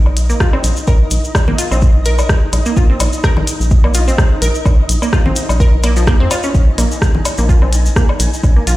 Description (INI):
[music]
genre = minimal techno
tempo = 127 BPM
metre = 4/4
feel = swing 55% on 16ths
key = unclear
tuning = A4 = 445 Hz
[part]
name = rubbery square bass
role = bass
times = 0.0-8.8 s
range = Bb1 to F2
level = -14 LUFS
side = equal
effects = sidechain pumping
[part]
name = flickering grainy texture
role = texture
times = 0.0-8.8 s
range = Eb4 to Ab5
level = -26 LUFS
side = left 1 dB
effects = built-in reverb, sidechain pumping
[part]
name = woodblock and congas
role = percussion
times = 0.1-8.5 s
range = none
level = -25 LUFS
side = left 3 dB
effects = tape echo
[part]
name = minimal click drum kit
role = drums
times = 0.2-8.8 s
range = hi-hat, rim click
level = -22 LUFS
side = equal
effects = none
[part]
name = tube shaker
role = percussion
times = 0.2-8.8 s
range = none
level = -25 LUFS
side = left 1 dB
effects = none
[part]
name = resonant blip pluck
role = riff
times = 0.3-8.7 s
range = F3 to Bb4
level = -21 LUFS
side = right 1 dB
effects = chorus, sidechain pumping, tape echo
[part]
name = electronic kick drum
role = drums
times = 0.4-8.5 s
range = none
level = -12 LUFS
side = equal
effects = none
[sound]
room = light reverb, digital ambience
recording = played on a big sound system in a bare room, stone room reverb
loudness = -11 LUFS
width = side -17 dB against mid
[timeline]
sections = 0.0-8.8 A section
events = none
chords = 0.0 Bb5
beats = 0.40 | 0.88 1.35 1.82 2.29 | 2.77 3.24 3.71 4.18 | 4.66 5.13 5.60 6.07 | 6.54 7.02 7.49 7.96 | 8.44